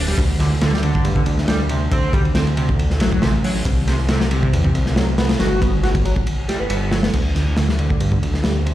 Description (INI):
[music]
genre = breakbeat, breaks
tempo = 138 BPM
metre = 4/4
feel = swing 54% on 16ths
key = D mixolydian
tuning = A4 = 440 Hz
[part]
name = overdriven synth lead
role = riff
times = 0.0-8.7 s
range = C3 to F#4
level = -23 LUFS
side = equal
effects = analog chorus, cassette tape, ping-pong delay
[part]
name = fat analog bass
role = bass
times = 0.0-8.7 s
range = D1 to G2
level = -20 LUFS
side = equal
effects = none
[part]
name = crunchy breakbeat drum kit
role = drums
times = 0.2-8.7 s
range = crash cymbal, hi-hat, kick drum, ride cymbal, snare drum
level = -20 LUFS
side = equal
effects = none
[sound]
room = light reverb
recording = played on a big sound system in a bare room, large studio reverb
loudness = -16 LUFS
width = side -14 dB against mid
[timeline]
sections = 0.0-7.1 A section; 7.1-8.7 B section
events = drop 0.0-7.1; break 6.3-7.1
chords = 0.2 D7sus4; 3.7 C; 5.4 G; 7.1 Dsus4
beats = | 0.18 0.61 1.05 1.48 | 1.92 2.35 2.79 3.22 | 3.66 4.09 4.53 4.96 | 5.40 5.83 6.26 6.70 | 7.13 7.57 8.00 8.44